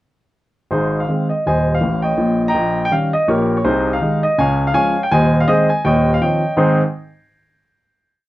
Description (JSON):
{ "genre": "jazz, stride piano", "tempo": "164 BPM", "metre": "4/4", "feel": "swing 58% on 8ths", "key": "Ab major", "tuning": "A4 = 440 Hz", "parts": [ { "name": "warm baby grand piano", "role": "solo", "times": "0.7-6.8 s", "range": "Eb1 to C6", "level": "-14 LUFS", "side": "equal", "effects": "none" } ], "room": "moderate studio reverb, RT60 0.6 s", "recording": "dark, warm production", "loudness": "-14 LUFS", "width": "side -16 dB against mid", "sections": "0.7-6.6 A section; 6.6-8.0 final chord", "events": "none", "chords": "0.7 Ab; 2.2 Eb7/Bb; 3.7 Ab/C; 4.4 Db; 5.1 Ab/Eb; 5.8 Eb13; 6.6 Ab", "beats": "| 0.72 1.09 1.46 1.82 | 2.19 2.56 2.92 3.29 | 3.65 4.02 4.38 4.75 | 5.12 5.48 5.85 6.21 | 6.58" }